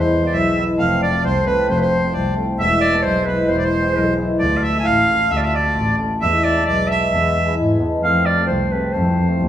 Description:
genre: klezmer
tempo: 132 BPM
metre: 2/4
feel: straight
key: unclear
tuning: A4 = 440 Hz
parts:
  - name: clear clarinet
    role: melody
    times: 0.0-9.5 s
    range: B4 to G#5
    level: -21 LUFS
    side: right 1 dB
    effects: none
  - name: accordion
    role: second line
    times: 0.0-7.5 s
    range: B4 to F5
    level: -22 LUFS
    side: right 3 dB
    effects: none
  - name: cimbalom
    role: accompaniment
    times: 0.0-9.5 s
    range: G#3 to G#4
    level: -21 LUFS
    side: left 1 dB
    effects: none
  - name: dark double bass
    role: bass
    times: 0.0-9.5 s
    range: E1 to G#2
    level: -21 LUFS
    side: left 1 dB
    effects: none
room: wet stone room reverb, RT60 1.4 s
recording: band playing live in one room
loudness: -15 LUFS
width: side -11 dB against mid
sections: 0.8-8.0 A section; 8.0-9.5 A section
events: none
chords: 0.0 E; 0.8 F; 2.6 E; 4.4 Dm; 6.2 E; 8.0 F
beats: 0.32 | 0.78 1.23 | 1.68 2.13 | 2.59 3.04 | 3.49 3.95 | 4.40 4.86 | 5.31 5.76 | 6.22 6.67 | 7.13 7.58 | 8.04 8.49 | 8.94 9.40

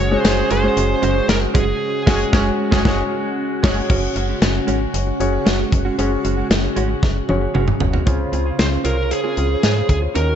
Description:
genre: 1980s-style pop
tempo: 115 BPM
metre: 4/4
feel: straight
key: unclear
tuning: A4 = 441 Hz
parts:
  - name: bluesy overdriven lead guitar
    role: melody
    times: 0.0-2.3, 8.6-10.4 s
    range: Ab4 to Db5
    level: -22 LUFS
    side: right 3 dB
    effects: distortion, digital delay
  - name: warm concert grand piano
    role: accompaniment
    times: 0.0-10.4 s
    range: Db3 to Db5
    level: -23 LUFS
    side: left 3 dB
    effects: none
  - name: ensemble organ-string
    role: sustained chords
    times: 0.0-10.4 s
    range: Db3 to C5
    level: -26 LUFS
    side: equal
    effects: phaser, ensemble chorus
  - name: direct-recorded clean electric guitar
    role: riff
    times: 0.0-10.3 s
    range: Ab3 to Bb4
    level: -28 LUFS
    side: right 6 dB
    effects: wide subtle chorus, digital delay
  - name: warm horn section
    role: stabs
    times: 0.0-3.8 s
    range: Db4 to Ab4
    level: -26 LUFS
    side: right 4 dB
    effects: none
  - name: slap-like FM bass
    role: bass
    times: 0.0-10.3 s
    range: Gb1 to Ab2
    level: -21 LUFS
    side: equal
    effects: none
  - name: modern studio drum kit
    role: drums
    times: 0.2-10.3 s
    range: crash cymbal, hi-hat, kick drum, snare drum, tambourine, toms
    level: -19 LUFS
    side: equal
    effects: none
room: moderate lush hall reverb, RT60 1.6 s, small room ambience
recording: dark, warm production, nothing above 7.9 kHz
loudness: -16 LUFS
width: side -9 dB against mid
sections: 0.0-3.9 A section; 3.9-8.1 B section; 8.1-10.4 C section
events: band accent 1.8-3.9; drum fill 7.0-8.1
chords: 0.0 Gbsus2; 8.1 Dbmaj7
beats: 0.24 0.77 1.29 | 1.81 2.33 2.85 3.37 | 3.90 4.42 4.94 5.46 | 5.98 6.50 7.03 7.55 | 8.07 8.59 9.11 9.63 | 10.16

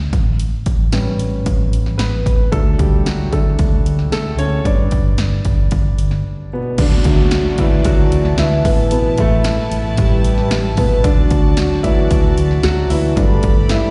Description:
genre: piano-driven pop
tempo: 113 BPM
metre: 4/4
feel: straight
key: D major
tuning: A4 = 438 Hz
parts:
  - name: warm upright piano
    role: accompaniment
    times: 0.0-13.9 s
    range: A2 to D5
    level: -22 LUFS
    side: equal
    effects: slapback echo
  - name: vintage muted fingered electric bass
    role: bass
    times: 0.0-13.8 s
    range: G1 to D2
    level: -20 LUFS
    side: equal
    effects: none
  - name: house drum kit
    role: drums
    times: 0.1-13.8 s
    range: crash cymbal, hi-hat, kick drum, snare drum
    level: -19 LUFS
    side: equal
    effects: none
  - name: dark French horn section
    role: second line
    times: 6.8-13.9 s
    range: E3 to A4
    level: -26 LUFS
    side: equal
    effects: delay, slapback echo
  - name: clear studio string section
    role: sustained chords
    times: 6.8-13.9 s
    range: E4 to B5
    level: -29 LUFS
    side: equal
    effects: none
  - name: downlifter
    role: sound effects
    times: 6.8-11.0 s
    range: none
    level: -33 LUFS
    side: equal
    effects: slapback echo
room: small room ambience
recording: live gig heard through the venue's PA, recital hall reverb, nothing above 11.0 kHz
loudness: -16 LUFS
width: mono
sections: 0.0-6.8 A section; 6.8-13.9 B section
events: upright piano solo 0.0-6.8, 6.8-13.9; break 6.3-6.8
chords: 0.1 A7; 2.5 D; 4.7 G; 6.8 D; 8.6 Asus2; 11.0 D; 13.2 G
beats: | 0.40 0.93 1.46 1.99 | 2.52 3.06 3.59 4.12 | 4.65 5.19 5.72 6.25 | 6.78 7.32 7.85 8.38 | 8.91 9.45 9.98 10.51 | 11.04 11.57 12.11 12.64 | 13.17 13.71

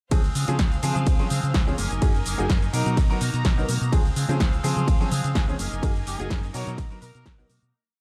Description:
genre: filtered disco house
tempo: 126 BPM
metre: 4/4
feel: swing 53% on 16ths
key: Db major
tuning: A4 = 441 Hz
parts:
  - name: bright concert grand piano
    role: accompaniment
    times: 0.1-7.4 s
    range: F3 to Bb4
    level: -32 LUFS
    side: equal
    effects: phaser, sidechain pumping
  - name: rich symphonic violin section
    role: sustained chords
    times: 0.1-7.7 s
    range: Eb4 to Bb5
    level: -39 LUFS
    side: equal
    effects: sidechain pumping
  - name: electric guitar with an envelope filter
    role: riff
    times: 0.1-7.7 s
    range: Eb3 to Ab4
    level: -38 LUFS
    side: equal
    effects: sidechain pumping
  - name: fingered electric bass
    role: bass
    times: 0.1-7.7 s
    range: Gb1 to Db3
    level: -29 LUFS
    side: equal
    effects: sidechain pumping
  - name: electronic kick drum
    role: drums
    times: 0.1-7.4 s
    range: none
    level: -24 LUFS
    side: equal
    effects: none
  - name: punchy analog drum machine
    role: drums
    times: 0.1-7.7 s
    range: cabasa, hi-hat, ride cymbal, snare drum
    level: -34 LUFS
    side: equal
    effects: sidechain pumping on hats, sidechain pumping on cymbals, sidechain pumping on perc
  - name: egg shaker and congas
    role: percussion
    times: 0.1-7.7 s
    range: none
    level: -40 LUFS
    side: equal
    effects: none
  - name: clear horn section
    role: melody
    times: 5.3-7.5 s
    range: Ab4 to Db5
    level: -42 LUFS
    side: equal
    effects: vintage 12-bit sampler grit, sidechain pumping
room: small room ambience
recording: none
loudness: -23 LUFS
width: mono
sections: 0.1-7.7 drop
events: drop 0.1-7.7; fade-out 5.2-7.7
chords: 0.1 Dbmaj7; 1.8 Gb69; 2.7 Cbmaj7; 3.9 Dbmaj7; 5.6 Gb69; 6.5 Cbmaj7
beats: | 0.11 0.59 1.07 1.54 | 2.02 2.50 2.97 3.45 | 3.92 4.40 4.88 5.35 | 5.83 6.30 6.78 7.26

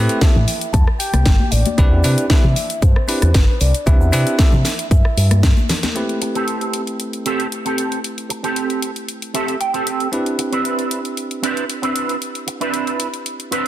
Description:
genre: nu-disco, nu disco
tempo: 115 BPM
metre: 4/4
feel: straight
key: A minor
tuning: A4 = 440 Hz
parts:
  - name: soft octave-layered synth lead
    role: melody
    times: 0.0-5.7 s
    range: B4 to A5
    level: -26 LUFS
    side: equal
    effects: chorus, tremolo, ping-pong delay
  - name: bell-like tine electric piano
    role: accompaniment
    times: 0.0-13.7 s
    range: A3 to B4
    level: -24 LUFS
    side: right 1 dB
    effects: tape echo
  - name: fingered electric bass with an envelope filter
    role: bass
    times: 0.0-5.5 s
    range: G1 to C3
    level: -16 LUFS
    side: equal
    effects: none
  - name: house drum kit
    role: drums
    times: 0.1-13.6 s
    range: hi-hat, rim click, snare drum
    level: -23 LUFS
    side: left 1 dB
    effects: none
  - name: egg shaker and congas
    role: percussion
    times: 0.1-5.9 s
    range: none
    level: -26 LUFS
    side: left 4 dB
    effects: none
  - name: electronic kick drum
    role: drums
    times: 0.2-5.5 s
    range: none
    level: -14 LUFS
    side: equal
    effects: none
  - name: electric guitar with an envelope filter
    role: riff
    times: 6.2-13.7 s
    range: C4 to G5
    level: -21 LUFS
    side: right 3 dB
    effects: ensemble chorus, low-pass filter, tape echo
room: light reverb, digital ambience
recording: dense, heavily limited modern master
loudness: -15 LUFS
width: side -13 dB against mid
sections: 0.0-6.0 A section; 6.0-13.7 B section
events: drum fill 5.7; clean electric guitar fill 9.1-10.1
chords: 0.0 Am7; 1.8 Cmaj9; 6.0 Am7; 10.1 Cmaj9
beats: 0.21 0.74 1.26 | 1.78 2.30 2.82 3.35 | 3.87 4.39 4.91 5.43 | 5.96 6.48 7.00 7.52 | 8.04 8.56 9.09 9.61 | 10.13 10.65 11.17 11.69 | 12.21 12.74 13.26

